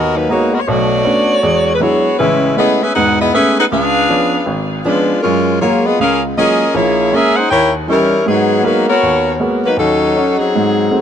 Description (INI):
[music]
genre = jazz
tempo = 158 BPM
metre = 4/4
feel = swing 64% on 8ths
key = G# minor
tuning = A4 = 440 Hz
[part]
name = warm saxophone section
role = melody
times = 0.0-11.0 s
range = F#3 to G5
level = -12 LUFS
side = left 1 dB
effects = tape echo
[part]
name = clear grand piano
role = accompaniment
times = 0.0-11.0 s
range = E1 to F#4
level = -17 LUFS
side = right 2 dB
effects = none
[sound]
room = light reverb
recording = dry, close 1970s-style studio recording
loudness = -11 LUFS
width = side -9 dB against mid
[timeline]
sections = 0.0-11.0 A section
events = none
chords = 0.0 G#m9; 0.7 Bm9; 1.4 E9; 2.2 Amaj9; 3.7 C#7b9; 5.2 F#maj9; 6.7 A#m7b5; 7.5 D#7b9; 8.3 G#m9; 9.8 D#m7b5